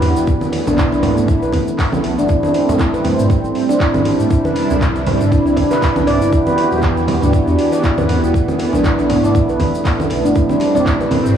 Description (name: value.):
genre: afro house.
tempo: 119 BPM.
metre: 4/4.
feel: swing 57% on 16ths.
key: unclear.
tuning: A4 = 439 Hz.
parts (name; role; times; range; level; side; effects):
warm analog pad; sustained chords; 0.0-11.4 s; C3 to G4; -19 LUFS; right 1 dB; chorus, sidechain pumping, cassette tape.
dark detuned saw bass; bass; 0.0-11.3 s; E1 to A2; -20 LUFS; equal; transformer saturation, sidechain pumping.
afro-pop drum kit; drums; 0.0-11.3 s; handclaps, hi-hat, toms; -25 LUFS; equal; cassette tape.
congas; percussion; 0.0-11.2 s; none; -22 LUFS; right 3 dB; none.
egg shaker; percussion; 0.2-11.3 s; none; -41 LUFS; left 4 dB; none.
electronic kick drum; drums; 0.3-11.0 s; none; -17 LUFS; equal; cassette tape.
handpan; arpeggios; 0.7-11.1 s; D4 to D5; -17 LUFS; equal; sidechain pumping, cassette tape, analog delay.
room: light reverb.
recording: home recording on cassette, small room ambience.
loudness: -13 LUFS.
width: side -9 dB against mid.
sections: 0.0-11.4 A section.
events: none.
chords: 0.3 B7sus4; 2.3 Am7; 4.3 Cmaj7; 6.3 Em7; 8.3 B7sus4; 10.4 Am7.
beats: | 0.28 0.78 1.28 1.79 | 2.29 2.80 3.30 3.80 | 4.31 4.81 5.32 5.82 | 6.33 6.83 7.33 7.84 | 8.34 8.85 9.35 9.86 | 10.36 10.86 11.37.